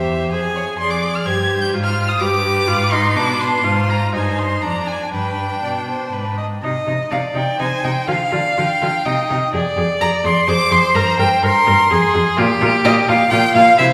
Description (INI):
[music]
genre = quick classical-period movement for string quartet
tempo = 125 BPM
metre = 3/4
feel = rubato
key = C minor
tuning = A4 = 440 Hz
[part]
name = rich violin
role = melody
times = 0.0-13.9 s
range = D5 to Ab6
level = -20 LUFS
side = equal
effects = none
[part]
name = rich violin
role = second line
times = 0.0-13.9 s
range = F4 to F5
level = -23 LUFS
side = equal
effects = none
[part]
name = rich viola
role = accompaniment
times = 0.0-13.9 s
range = D4 to Bb4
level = -25 LUFS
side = equal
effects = none
[part]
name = rich cello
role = bass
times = 0.0-13.9 s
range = E2 to D3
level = -23 LUFS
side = equal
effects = none
[sound]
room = wet recital hall reverb, RT60 1.7 s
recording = heard from further back in the room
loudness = -17 LUFS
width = mono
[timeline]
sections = 0.0-6.6 A section; 6.6-13.9 B section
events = none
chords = 0.3 Fm; 0.8 Ddim/F; 2.2 G; 3.6 Ab; 4.6 Ddim/F; 5.1 G; 6.6 Cm; 8.1 G5/D; 9.1 Cm; 9.5 Fm; 10.9 C5/G; 11.9 Fm; 12.4 Bb5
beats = 0.32 | 0.79 1.26 1.73 | 2.21 2.68 3.16 | 3.65 4.13 4.62 | 5.13 5.63 6.13 | 6.63 7.11 7.60 | 8.08 8.58 9.06 | 9.54 10.01 10.48 | 10.95 11.44 11.91 | 12.38 12.85 13.31 | 13.78